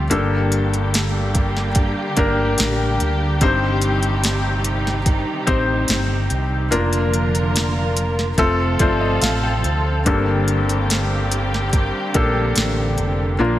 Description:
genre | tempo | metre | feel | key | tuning
pop ballad | 72 BPM | 4/4 | straight | unclear | A4 = 440 Hz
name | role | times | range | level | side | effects
felt-muted upright piano | accompaniment | 0.0-13.6 s | G2 to A5 | -21 LUFS | left 2 dB | none
dark studio string section | sustained chords | 0.0-13.6 s | Bb2 to Bb4 | -24 LUFS | right 1 dB | none
fretless electric bass | bass | 0.0-13.6 s | F1 to D2 | -21 LUFS | equal | none
smooth R&B drum kit | drums | 0.1-13.2 s | hi-hat, kick drum, snare drum | -21 LUFS | equal | overdrive
room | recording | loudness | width
light reverb | none | -16 LUFS | side -13 dB against mid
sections
0.0-13.6 A section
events
felt piano fill 8.4-10.1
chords
0.1 Gmadd9; 3.4 Cm/G; 6.7 Bb/F; 8.4 F; 10.1 Gmadd9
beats
| 0.11 0.94 1.76 2.59 | 3.42 4.24 5.06 5.89 | 6.72 7.55 8.38 9.22 | 10.06 10.90 11.74 12.57 | 13.40

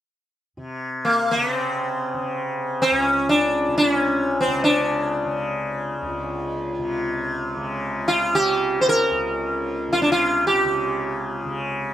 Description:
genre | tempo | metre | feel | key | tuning
indian classical | free time | none | none | C# raga marwa | A4 = 438 Hz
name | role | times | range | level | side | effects
tanpura | drone | 0.6-11.9 s | C#2 to C#3 | -26 LUFS | left 1 dB | none
sitar | melody | 1.0-11.9 s | A#3 to B#4 | -20 LUFS | equal | slapback echo
room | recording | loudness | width
little or no reverb | recorded outdoors, with no room sound | -20 LUFS | side -11 dB against mid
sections
0.6-11.9 A section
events
none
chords
none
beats
free time

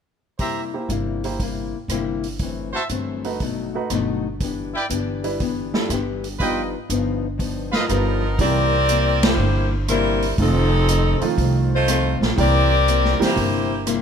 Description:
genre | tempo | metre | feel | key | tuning
jazz, big band swing | 120 BPM | 4/4 | swing 68% on 8ths | C mixolydian | A4 = 441 Hz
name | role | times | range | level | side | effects
fingerpicked acoustic archtop guitar | accompaniment | 0.4-14.0 s | F2 to G4 | -27 LUFS | left 8 dB | none
brilliant trumpet section | stabs | 0.4-7.8 s | E4 to Bb5 | -26 LUFS | right 2 dB | none
swinging big-band drum kit | drums | 0.4-14.0 s | hi-hat, kick drum, ride cymbal, rim click, snare drum | -25 LUFS | right 1 dB | none
clear baby grand piano | accompaniment | 0.7-13.4 s | Eb3 to C5 | -26 LUFS | right 5 dB | none
upright bass | bass | 0.9-14.0 s | F1 to C2 | -23 LUFS | right 1 dB | none
clear saxophone section | melody | 7.8-13.9 s | F3 to D5 | -21 LUFS | left 2 dB | none
room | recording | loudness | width
light reverb | none | -18 LUFS | side -7 dB against mid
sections
0.4-8.4 A section; 8.4-14.0 B section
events
band accent 9.1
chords
0.4 C7; 2.4 F#m7b5; 3.4 B7; 4.4 Em7; 6.4 G7alt; 8.4 C7; 10.4 F7; 12.4 C7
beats
| 0.39 0.89 1.40 1.90 | 2.40 2.90 3.40 3.90 | 4.40 4.90 5.40 5.90 | 6.40 6.90 7.40 7.90 | 8.39 8.89 9.39 9.89 | 10.39 10.88 11.38 11.88 | 12.38 12.88 13.37 13.87

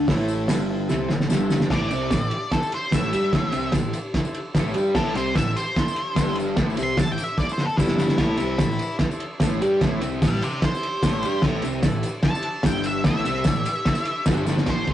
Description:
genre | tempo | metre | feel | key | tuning
garage rock duo or trio | 148 BPM | 4/4 | straight | A minor | A4 = 439 Hz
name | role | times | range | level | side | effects
fuzz guitar | riff | 0.0-14.9 s | G2 to G4 | -25 LUFS | equal | distortion
fuzz picked electric bass | bass | 0.0-14.9 s | G1 to G2 | -32 LUFS | equal | overdrive
combo organ | sustained chords | 0.1-14.5 s | E4 to D5 | -35 LUFS | equal | spring reverb
cloth-damped thuddy drum kit | drums | 0.1-14.9 s | crash cymbal, hi-hat, kick drum, ride cymbal, snare drum | -23 LUFS | equal | none
tambourine | percussion | 0.1-14.6 s | none | -43 LUFS | left 6 dB | none
octave-fuzz lead guitar | melody | 1.7-14.9 s | E4 to C6 | -27 LUFS | left 1 dB | distortion
room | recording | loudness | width
light reverb | rough rehearsal-room recording, warm saturation, nothing above 10.6 kHz | -20 LUFS | side -12 dB against mid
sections
0.0-1.7 A section; 1.7-14.7 B section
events
drum fill 0.9-1.7, 7.4-8.2, 14.5; lead electric guitar solo 1.7-14.7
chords
0.0 Am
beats
| 0.09 0.49 0.90 1.30 | 1.71 2.11 2.52 2.93 | 3.33 3.74 4.14 4.55 | 4.95 5.36 5.76 6.17 | 6.58 6.98 7.38 7.79 | 8.19 8.60 9.00 9.41 | 9.81 10.22 10.62 11.03 | 11.43 11.84 12.24 12.65 | 13.05 13.46 13.86 14.27 | 14.68

